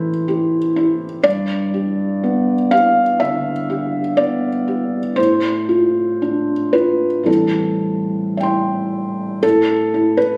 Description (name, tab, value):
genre	neoclassical minimalist piano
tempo	55-62 BPM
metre	4/4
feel	rubato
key	A minor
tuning	A4 = 440 Hz
part	felt-muted upright piano	solo	0.0-10.4 s	G2 to C6	-18 LUFS	equal	none
room	light reverb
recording	recorded on a phone in the room, studio reverb, compression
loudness	-18 LUFS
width	mono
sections	0.0-9.4 A section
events	none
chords	0.0 Am7; 1.2 G; 5.2 F6/A; 7.3 Am7; 9.4 A5